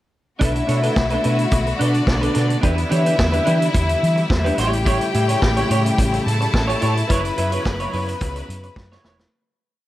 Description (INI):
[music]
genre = disco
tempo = 108 BPM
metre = 4/4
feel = straight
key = B minor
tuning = A4 = 440 Hz
[part]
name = clear chamber violin section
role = second line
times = 0.4-9.3 s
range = D4 to B5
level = -23 LUFS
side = left 2 dB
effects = none
[part]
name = electric guitar at the edge of break-up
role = accompaniment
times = 0.4-9.3 s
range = D4 to E5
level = -24 LUFS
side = right 2 dB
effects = analog chorus
[part]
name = clear studio string section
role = sustained chords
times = 0.4-9.3 s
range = C#3 to F#4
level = -26 LUFS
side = left 2 dB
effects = none
[part]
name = hollow-body short-scale fingered electric bass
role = bass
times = 0.4-9.2 s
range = E1 to E3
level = -21 LUFS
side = equal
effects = none
[part]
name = vintage drum kit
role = drums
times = 0.4-9.3 s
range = hi-hat, kick drum, snare drum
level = -23 LUFS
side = equal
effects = none
[sound]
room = light reverb, small room ambience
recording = none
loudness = -16 LUFS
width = side -15 dB against mid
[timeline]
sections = 0.4-9.3 verse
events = fade-out 7.1-9.3; drum fill 8.8-9.3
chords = 0.4 Bm7; 2.6 Em7; 4.6 A7; 7.1 F#7sus4